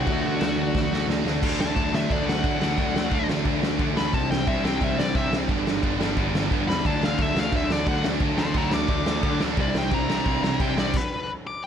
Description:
punk rock; 176 BPM; 4/4; straight; A4 = 442 Hz
high-gain lead guitar; melody; 0.0-11.7 s; F#4 to D6; -30 LUFS; left 4 dB; distortion, digital delay
cranked stack guitar; riff; 0.0-10.9 s; G2 to F#4; -30 LUFS; right 14 dB; overdrive
high-gain distorted guitar; riff; 0.0-10.9 s; G2 to D4; -32 LUFS; equal; distortion
sludgy distorted guitar; riff; 0.0-10.9 s; G2 to D4; -30 LUFS; left 16 dB; overdrive
fuzz picked electric bass; bass; 0.0-10.9 s; G1 to D3; -29 LUFS; equal; overdrive
raw garage drum kit; drums; 0.1-11.0 s; crash cymbal, kick drum, ride cymbal, snare drum; -26 LUFS; equal
little or no reverb; -21 LUFS; side -8 dB against mid
0.0-1.4 A section; 1.4-11.7 B section
half time 0.0-1.4; drum fill 0.7-1.4; lead electric guitar solo 1.4-11.7; stop 10.9-11.7
0.1 D; 4.1 C; 5.5 G; 6.8 D; 9.6 C; 10.9 G (rootless)
| 0.07 0.41 0.74 1.08 | 1.42 1.76 2.10 2.43 | 2.77 3.11 3.45 3.79 | 4.13 4.47 4.81 5.15 | 5.49 5.83 6.17 6.51 | 6.85 7.19 7.53 7.87 | 8.21 8.55 8.89 9.23 | 9.57 9.92 10.26 10.60 | 10.94 11.28 11.62

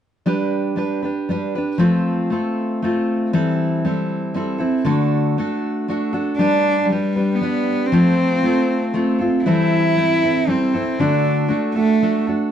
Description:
acoustic folk duo or small band; 117 BPM; 3/4; straight; G major; A4 = 440 Hz
picked steel-string acoustic guitar; accompaniment; 0.3-12.5 s; D3 to B4; -18 LUFS; equal
warm cello; melody; 6.4-12.2 s; G3 to E4; -18 LUFS; equal
light reverb; dark, warm production, nothing above 10.9 kHz; -16 LUFS; side -9 dB against mid
0.3-6.4 A section; 6.4-12.5 B section
0.3 G; 1.8 F; 3.3 C6/E; 4.9 D; 6.4 G; 7.9 F; 9.5 C6/E; 11.0 D
| 0.26 0.77 1.28 | 1.79 2.30 2.81 | 3.32 3.83 4.34 | 4.85 5.37 5.88 | 6.39 6.90 7.41 | 7.92 8.43 8.94 | 9.45 9.97 10.48 | 10.99 11.50 12.02

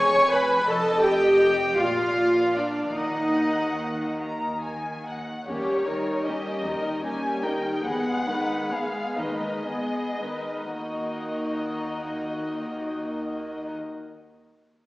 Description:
classical, slow romantic movement for string orchestra; 35-57 BPM (dotted quarters); 6/8; rubato; Eb minor; A4 = 440 Hz
dark studio violin section; melody; 0.0-13.7 s; Db5 to Bb5; -32 LUFS; left 1 dB
warm studio violin section; second line; 0.0-13.7 s; Cb4 to Db6; -29 LUFS; left 1 dB
rich studio viola section; accompaniment; 0.0-13.7 s; Eb3 to Db5; -25 LUFS; equal
dark studio double bass section; bass; 0.0-13.7 s; F1 to Eb2; -39 LUFS; right 1 dB
warm studio cello section; bass; 0.0-13.7 s; Eb2 to Eb3; -38 LUFS; right 1 dB
wet scoring stage reverb, RT60 1.5 s; heard from further back in the room, small speaker sound; -23 LUFS; side -19 dB against mid
0.0-5.5 A section; 5.5-10.8 B section; 10.8-14.9 C section
slowing down 4.2-10.8
0.0 Fdim; 0.7 F9; 1.8 Bb; 3.0 Ebm; 5.5 Eb7; 7.9 Abm/Eb; 10.8 Ebm
| 0.67 1.77 | 2.95 4.20 | 5.49 6.66 | 7.87 9.19 | 10.77 12.28

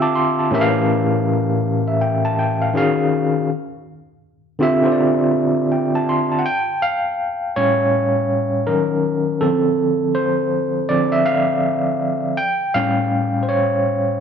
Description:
R&B; 81 BPM; 4/4; swing 63% on 16ths; A4 = 440 Hz
overdriven tine electric piano; solo; 0.0-14.2 s; A2 to E6; -16 LUFS; equal; medium tremolo
moderate large studio reverb, RT60 1.3 s; band playing live in one room; -16 LUFS; side -7 dB against mid
0.0-6.5 A section; 6.5-14.2 B section
tine electric piano fill 0.0-0.5; tine electric piano solo 6.5-14.2
0.0 Dm11; 0.5 A7b9b13; 2.7 Ebm11; 3.5 Dm11; 6.5 A7b13; 8.7 Ebm7; 9.4 Dm7; 12.4 A7b13
| 0.53 1.27 2.01 2.75 | 3.49 4.23 4.97 5.71 | 6.45 7.19 7.93 8.67 | 9.41 10.15 10.90 11.64 | 12.38 13.12 13.86

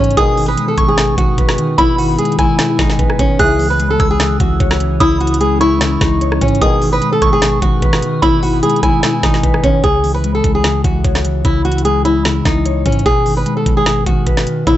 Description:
hip hop, trap; 149 BPM; 4/4; half-time; C# minor; A4 = 438 Hz
flamenco guitar; melody; 0.0-14.8 s; C#4 to B4; -16 LUFS; equal; tape echo
soft synth bell; second line; 0.0-9.8 s; G#5 to F#6; -20 LUFS; right 2 dB; chorus, tape echo
mellow electric guitar; accompaniment; 0.0-14.8 s; B2 to C#5; -18 LUFS; left 2 dB
granular cloud pad; sustained chords; 0.0-9.8 s; D#3 to G#4; -28 LUFS; equal
long sustained 808-style bass; bass; 0.0-14.8 s; G#1 to G#2; -19 LUFS; equal
trap drum kit; drums; 0.0-14.8 s; hi-hat, kick drum, rim click, snare drum; -17 LUFS; equal
dark brass ensemble; stabs; 0.2-0.5, 3.4-3.7, 6.6-6.9 s; G#2 to E3; -21 LUFS; left 2 dB
little or no reverb; dry, gritty hardware recording, transformer saturation, nothing above 8.0 kHz; -11 LUFS; side -13 dB against mid
0.0-9.8 A section; 9.8-14.8 B section
0.2 G#m; 3.4 C#m; 6.6 G#m; 9.8 C#m; 13.1 G#m
| 0.17 0.57 0.98 1.38 | 1.78 2.19 2.59 2.99 | 3.39 3.80 4.20 4.60 | 5.00 5.41 5.81 6.21 | 6.62 7.02 7.42 7.82 | 8.23 8.63 9.03 9.43 | 9.84 10.24 10.64 11.04 | 11.45 11.85 12.25 12.66 | 13.06 13.46 13.86 14.27 | 14.67

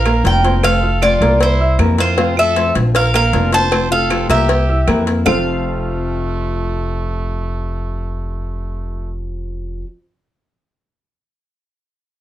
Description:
latin, Cuban son and guajira; 155 BPM; 4/4; straight; F major; A4 = 439 Hz
Cuban tres; melody; 0.0-9.8 s; C5 to A5; -17 LUFS; equal
growling trumpet; second line; 0.0-9.1 s; A3 to C5; -26 LUFS; right 5 dB
dark grand piano; arpeggios; 0.0-9.8 s; F3 to F6; -22 LUFS; right 2 dB
upright bass; bass; 0.0-9.8 s; F1 to F2; -18 LUFS; equal
claves; percussion; 0.1-5.4 s; -26 LUFS; right 7 dB
cowbell and bongos; percussion; 0.1-5.4 s; -22 LUFS; left 2 dB
nylon-string guitar; accompaniment; 0.2-9.9 s; F2 to F4; -24 LUFS; left 6 dB
moderate studio reverb, RT60 0.6 s; -13 LUFS; side -13 dB against mid
0.0-5.3 A section; 5.3-8.4 B section
0.0 Bb; 0.6 F; 1.4 C7; 2.2 F; 2.9 Bb; 3.7 F; 4.5 C7; 5.3 F
0.25 | 0.63 1.02 1.41 1.79 | 2.18 2.56 2.95 3.33 | 3.72 4.11 4.49 4.88 | 5.26 5.65 6.04 6.42 | 6.81 7.20 7.59 7.97

